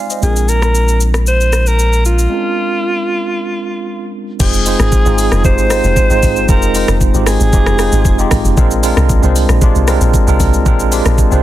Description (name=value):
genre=amapiano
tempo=115 BPM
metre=4/4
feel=straight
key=F dorian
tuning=A4 = 436 Hz
part: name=tine electric piano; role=accompaniment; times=0.0-11.4 s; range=Ab3 to C6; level=-17 LUFS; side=right 2 dB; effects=fast stereo tremolo
part: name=smooth R&B drum kit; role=drums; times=0.1-11.4 s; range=crash cymbal, hi-hat, kick drum, rim click, shaker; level=-15 LUFS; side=equal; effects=none
part: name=clear alto saxophone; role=melody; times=0.2-8.3 s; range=F4 to C5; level=-17 LUFS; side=right 1 dB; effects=low-pass filter, tape echo
part: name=punchy sub bass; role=bass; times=0.2-2.3 s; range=Bb1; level=-12 LUFS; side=equal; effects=none
part: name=deep log drum bass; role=bass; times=4.4-11.4 s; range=F1 to C2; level=-14 LUFS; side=equal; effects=none
room=little or no reverb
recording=dense, heavily limited modern master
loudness=-10 LUFS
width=side -14 dB against mid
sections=0.0-4.4 A section; 4.4-11.4 B section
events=break 2.3-4.4; drop 4.4-11.4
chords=0.2 Bb9; 4.4 Fm7; 8.6 Bb9